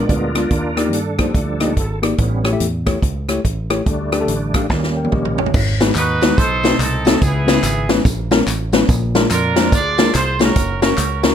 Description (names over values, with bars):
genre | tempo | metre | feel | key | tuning
uptempo gospel | 143 BPM | 4/4 | swing 62% on 8ths | unclear | A4 = 441 Hz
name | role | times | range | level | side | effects
mellow tine electric piano | accompaniment | 0.0-11.3 s | G#2 to G5 | -19 LUFS | left 3 dB | none
bright tonewheel organ | sustained chords | 0.0-5.5 s | F3 to D5 | -23 LUFS | right 3 dB | slow rotary speaker, chorus vibrato
fingered electric bass | bass | 0.0-11.3 s | F#1 to G2 | -22 LUFS | right 1 dB | none
swinging big-band drum kit | drums | 0.1-11.3 s | crash cymbal, hi-hat, kick drum, rim click, snare drum, toms | -18 LUFS | equal | none
tambourine and handclaps | percussion | 5.5-11.3 s | none | -30 LUFS | left 2 dB | none
clear horn section | melody | 6.0-11.3 s | B3 to D5 | -19 LUFS | right 3 dB | none
room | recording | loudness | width
light reverb, studio reverb | none | -14 LUFS | side -9 dB against mid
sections
0.0-5.5 A section; 5.5-11.3 B section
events
tonewheel organ solo 0.0-5.5; drum fill 4.7-5.5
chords
0.0 Bb7b9; 0.5 Ebmaj7; 2.2 A7; 3.9 Dsus4; 4.7 Eb7; 5.5 G#m7; 6.4 B7b9; 7.2 C#m7; 8.9 A#7; 10.6 F#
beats
0.09 | 0.51 0.93 1.35 1.77 | 2.19 2.60 3.02 3.44 | 3.86 4.28 4.70 5.12 | 5.54 5.96 6.38 6.80 | 7.21 7.63 8.05 8.47 | 8.89 9.31 9.72 10.14 | 10.56 10.98